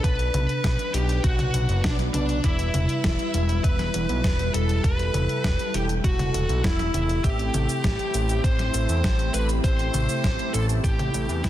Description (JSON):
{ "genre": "synthwave", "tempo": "100 BPM", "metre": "4/4", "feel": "straight", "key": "E minor", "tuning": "A4 = 440 Hz", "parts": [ { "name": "high-gain lead guitar", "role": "melody", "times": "0.0-11.5 s", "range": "D4 to C5", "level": "-29 LUFS", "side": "left 1 dB", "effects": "distortion, ping-pong delay" }, { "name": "string machine, violins", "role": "second line", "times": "0.0-11.5 s", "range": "D5 to C6", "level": "-34 LUFS", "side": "equal", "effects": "ensemble chorus" }, { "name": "chorused pulse-width pad", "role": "sustained chords", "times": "0.0-11.5 s", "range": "G3 to B4", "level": "-31 LUFS", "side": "equal", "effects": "sidechain pumping" }, { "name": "fat analog bass", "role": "bass", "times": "0.0-11.5 s", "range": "E1 to E2", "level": "-25 LUFS", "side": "equal", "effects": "none" }, { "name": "clean 12-bit digital drum machine", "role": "drums", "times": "0.0-11.5 s", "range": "hi-hat, shaker, snare drum, toms", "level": "-29 LUFS", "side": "equal", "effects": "overdrive" }, { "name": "electronic kick drum", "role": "drums", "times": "0.0-11.5 s", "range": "none", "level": "-24 LUFS", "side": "equal", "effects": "overdrive" } ], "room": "little or no reverb", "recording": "dense, heavily limited modern master", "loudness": "-21 LUFS", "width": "side -13 dB against mid", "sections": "0.0-11.5 A section", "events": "fade-out 10.4-11.5", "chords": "0.0 Bm; 2.4 Em; 7.2 Am7" }